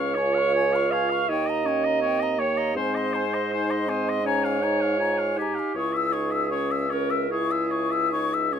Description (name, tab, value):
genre	classical, slow romantic movement for wind quintet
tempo	71-82 BPM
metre	4/4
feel	rubato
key	unclear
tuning	A4 = 442 Hz
part	silver concert flute	melody	0.0-8.6 s	G5 to Fb6	-31 LUFS	left 6 dB	none
part	warm oboe	second line	0.0-8.6 s	C5 to Ab5	-30 LUFS	left 6 dB	none
part	mellow French horn	accompaniment	0.0-8.6 s	Bb3 to F4	-31 LUFS	left 2 dB	none
part	warm clarinet	accompaniment	0.0-8.6 s	G4 to F5	-26 LUFS	right 5 dB	none
part	dark bassoon	bass	0.0-8.6 s	Db2 to Ab2	-28 LUFS	right 1 dB	none
room	light reverb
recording	none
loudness	-22 LUFS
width	side -8 dB against mid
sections	0.0-8.6 A section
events	none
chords	0.0 Db; 1.3 Eb7; 2.8 Ab; 4.3 Bbm7/Ab; 5.8 Dbm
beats	0.55 1.29 2.02 | 2.76 3.51 4.25 5.00 | 5.76 6.53 7.31 8.12